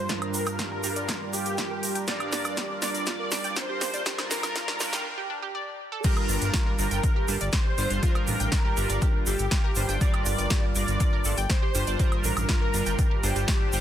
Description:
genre	progressive house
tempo	121 BPM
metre	4/4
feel	straight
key	G minor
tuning	A4 = 440 Hz
part	wide unison lead	melody	0.0-13.8 s	G4 to D5	-33 LUFS	equal	ensemble chorus, sidechain pumping, ping-pong delay
part	soft supersaw	second line	0.0-13.8 s	G4 to D5	-38 LUFS	left 1 dB	none
part	chorused polysynth	stabs	0.0-13.8 s	G2 to C5	-32 LUFS	right 2 dB	sidechain pumping, tape echo
part	analog pluck	arpeggios	0.1-13.6 s	D4 to G5	-36 LUFS	right 2 dB	chorus, sidechain pumping, tape echo
part	big-room dance drum kit	drums	0.1-13.8 s	crash cymbal, hi-hat, snare drum, woodblock	-31 LUFS	equal	sidechain pumping on hats, sidechain pumping on perc, sidechain pumping on cymbals
part	electronic kick drum	drums	0.1-13.6 s	none	-26 LUFS	equal	high-pass filter on kick, high-pass filter on room
part	egg shaker	percussion	0.1-13.8 s	none	-36 LUFS	right 3 dB	none
part	fat analog bass	bass	6.3-13.8 s	G1 to A1	-28 LUFS	equal	tube saturation, sidechain pumping
room	light reverb, digital ambience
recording	dense, heavily limited modern master, high-pass filter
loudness	-24 LUFS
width	side -11 dB against mid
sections	0.0-6.0 A section; 6.0-13.8 B section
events	build-up 0.0-6.0; drum fill 0.0-5.1; filter sweep on synth pluck 0.0-6.0; break 5.1-6.0; drop 6.0-13.8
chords	0.0 Gm7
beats	| 0.09 0.59 1.09 1.58 | 2.08 2.57 3.07 3.56 | 4.06 4.56 5.05 5.55 | 6.04 6.54 7.04 7.53 | 8.03 8.52 9.02 9.52 | 10.01 10.51 11.00 11.50 | 11.99 12.49 12.99 13.48

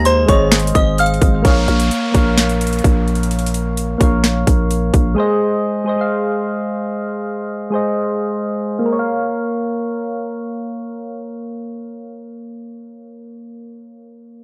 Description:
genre	hip hop, trap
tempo	129 BPM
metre	4/4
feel	half-time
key	Bb minor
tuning	A4 = 440 Hz
part	soft electric-piano-like synth keys	accompaniment	0.0-14.4 s	Ab3 to F5	-22 LUFS	equal	chorus, low-pass filter
part	growling 808-style bass	bass	0.0-5.2 s	Ab1 to Eb2	-20 LUFS	equal	tube saturation
part	delicate synth tine bell	melody	0.1-1.4 s	C5 to F6	-20 LUFS	equal	chorus, tape echo
part	trap drum kit	drums	0.1-5.0 s	finger snaps, hi-hat, kick drum, rim click, snare drum	-18 LUFS	equal	overdrive
part	downlifter	sound effects	1.4-5.2 s	none	-31 LUFS	equal	none
room	digital ambience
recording	dry, gritty hardware recording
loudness	-17 LUFS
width	mono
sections	0.0-1.4 A section; 1.4-8.9 B section; 8.9-12.6 C section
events	filter sweep on synth keys 1.4-8.9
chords	0.0 Ab; 1.4 Bbm; 5.2 Ab; 8.9 Bbm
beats	0.05 0.52 0.98 | 1.45 1.91 2.38 2.84 | 3.31 3.77 4.24 4.70 | 5.17 5.63 6.10 6.56 | 7.03 7.49 7.96 8.43 | 8.89 9.36 9.82 10.29 | 10.75 11.21 11.68 12.15

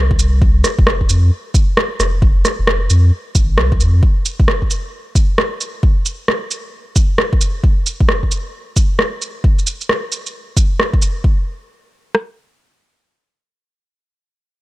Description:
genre	future garage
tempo	133 BPM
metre	4/4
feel	swing 64% on 16ths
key	F minor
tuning	A4 = 442 Hz
part	warm sub bass	bass	0.0-4.0 s	F1 to F2	-13 LUFS	equal	sidechain pumping
part	deep house drum kit	drums	0.1-12.3 s	kick drum, rim click	-14 LUFS	equal	overdrive
part	electronic shaker and rim click	drums	0.2-11.1 s	none	-18 LUFS	right 1 dB	none
room	little or no reverb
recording	none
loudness	-13 LUFS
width	side -17 dB against mid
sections	0.0-11.2 A section; 11.2-14.6 B section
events	none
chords	none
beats	| 0.42 0.87 1.32 1.77 | 2.22 2.67 3.12 3.58 | 4.03 4.48 4.93 5.38 | 5.83 6.28 6.73 7.18 | 7.63 8.09 8.54 8.99 | 9.44 9.89 10.34 10.79 | 11.24 11.70 12.15

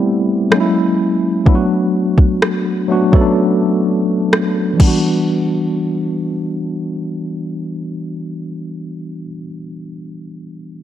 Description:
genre	contemporary R&B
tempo	63 BPM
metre	4/4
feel	straight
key	E minor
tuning	A4 = 440 Hz
part	tine electric piano	accompaniment	0.0-10.8 s	E3 to A4	-16 LUFS	equal	fast stereo tremolo
part	smooth R&B drum kit	drums	0.5-5.0 s	crash cymbal, kick drum, rim click	-14 LUFS	equal	overdrive
room	light reverb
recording	dark, warm production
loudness	-14 LUFS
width	side -11 dB against mid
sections	0.0-5.3 A section; 5.3-9.1 B section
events	none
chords	0.0 Am9; 0.5 F#7; 1.5 Bm7; 4.8 Em9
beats	0.51 | 1.46 2.41 3.37 4.32 | 5.27 6.22 7.18 8.13

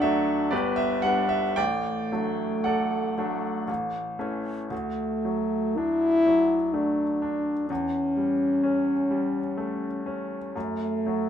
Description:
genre	classical, romantic duo for French horn and grand piano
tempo	54-65 BPM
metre	3/4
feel	rubato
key	D major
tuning	A4 = 440 Hz
part	dark French horn	melody	0.0-11.3 s	A3 to E4	-25 LUFS	left 1 dB	none
part	bright grand piano	accompaniment	0.0-11.3 s	G1 to A5	-28 LUFS	equal	none
room	light reverb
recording	minimal, uncompressed stereo recording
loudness	-24 LUFS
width	side -9 dB against mid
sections	0.0-4.7 A section; 4.7-11.3 B section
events	none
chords	0.0 D; 0.5 G; 1.6 D/A; 3.7 A; 4.7 D; 7.7 A7/E; 10.6 D/F# (rootless)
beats	0.52 | 1.57 2.67 3.69 | 4.71 5.78 6.74 | 7.70 8.63 9.58 | 10.55

